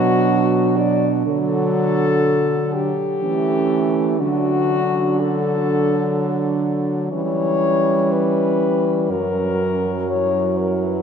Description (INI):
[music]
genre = classical, lyrical piece for horn quartet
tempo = 61 BPM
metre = 3/4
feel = uneven beats, rubato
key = unclear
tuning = A4 = 439 Hz
[part]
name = warm French horn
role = melody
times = 0.0-11.0 s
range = F#4 to D5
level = -20 LUFS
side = left 4 dB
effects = none
[part]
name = dark French horn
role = second line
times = 0.0-11.0 s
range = C#4 to E4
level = -24 LUFS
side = right 11 dB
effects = none
[part]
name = warm French horn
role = accompaniment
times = 0.0-11.0 s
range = F#3 to A3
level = -23 LUFS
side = equal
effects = none
[part]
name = warm French horn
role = bass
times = 0.0-11.0 s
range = F#2 to E3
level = -23 LUFS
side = right 2 dB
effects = none
[sound]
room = wet cathedral reverb, RT60 6.3 s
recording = none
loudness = -16 LUFS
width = side -7 dB against mid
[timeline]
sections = 0.0-11.0 A section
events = none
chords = 0.0 Bm; 1.3 D; 3.2 A7/E; 4.2 D; 7.1 C#dim/E; 9.1 F#